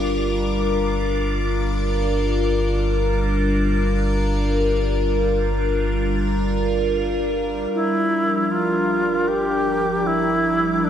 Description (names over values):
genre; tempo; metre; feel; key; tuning
ambient; free time; none; none; G dorian; A4 = 440 Hz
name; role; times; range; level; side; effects
evolving wavetable pad; sustained chords; 0.0-10.9 s; F3 to Bb4; -21 LUFS; left 1 dB; phaser, built-in reverb
warm sub bass; bass; 0.0-10.9 s; G1; -24 LUFS; equal; tube saturation
warm symphonic violin section; texture; 0.0-10.9 s; D6; -38 LUFS; left 2 dB; none
bright reedy alto flute; melody; 7.7-10.9 s; D4 to G4; -20 LUFS; right 1 dB; tape echo
room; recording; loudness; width
moderate plate reverb, RT60 3.6 s; echo-heavy mix; -18 LUFS; side -9 dB against mid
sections
0.0-7.7 A section; 7.7-10.9 B section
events
fade-out on violin section 0.0-7.7; filter sweep on ambient pad 7.7-10.9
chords
0.0 Gm7